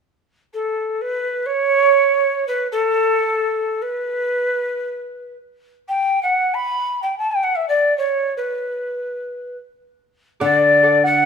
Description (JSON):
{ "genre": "andean folk", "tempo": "free time", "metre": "none", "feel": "none", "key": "unclear", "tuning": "A4 = 439 Hz", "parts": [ { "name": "mellow quena", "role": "melody", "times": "0.5-11.3 s", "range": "A4 to B5", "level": "-17 LUFS", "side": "equal", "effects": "none" }, { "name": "charango", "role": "accompaniment", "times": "10.4-11.3 s", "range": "A4 to F#5", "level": "-22 LUFS", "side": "right 2 dB", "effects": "none" }, { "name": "flamenco guitar", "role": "accompaniment", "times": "10.4-11.2 s", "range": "D3", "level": "-22 LUFS", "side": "left 3 dB", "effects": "none" } ], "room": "light reverb", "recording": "minimal, uncompressed stereo recording", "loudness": "-17 LUFS", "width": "side -6 dB against mid", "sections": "0.1-10.4 A section", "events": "none", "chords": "0.1 N.C.; 10.4 D" }